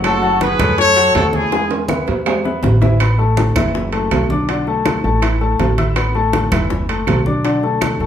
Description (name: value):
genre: latin, salsa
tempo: 162 BPM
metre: 4/4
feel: straight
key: A major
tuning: A4 = 440 Hz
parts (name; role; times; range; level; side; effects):
- clear grand piano; accompaniment; 0.0-8.1 s; D3 to E6; -20 LUFS; left 4 dB; none
- upright bass; bass; 0.0-8.1 s; F#1 to F#2; -18 LUFS; equal; none
- bongos; percussion; 0.0-8.1 s; none; -26 LUFS; left 4 dB; none
- claves; percussion; 0.0-8.0 s; none; -28 LUFS; right 7 dB; none
- congas; percussion; 0.0-8.1 s; none; -23 LUFS; equal; none
- timbales; percussion; 0.0-8.0 s; none; -23 LUFS; right 5 dB; none
- brilliant horn section; melody; 0.1-1.7 s; E4 to C#5; -14 LUFS; left 1 dB; none
room: wet large studio reverb, RT60 0.9 s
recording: band playing live in one room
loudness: -13 LUFS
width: side -9 dB against mid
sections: 0.0-3.0 A section; 3.0-8.1 B section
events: drum fill 1.5-3.0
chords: 0.0 F#madd9; 1.5 E; 3.0 Asus2; 3.7 F#m7; 4.5 Bm7; 5.2 Asus2; 6.7 F#m7; 7.4 Bm7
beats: | 0.04 0.41 0.78 1.15 | 1.52 1.89 2.26 2.63 | 3.00 3.37 3.74 4.11 | 4.48 4.85 5.22 5.59 | 5.96 6.34 6.71 7.08 | 7.45 7.82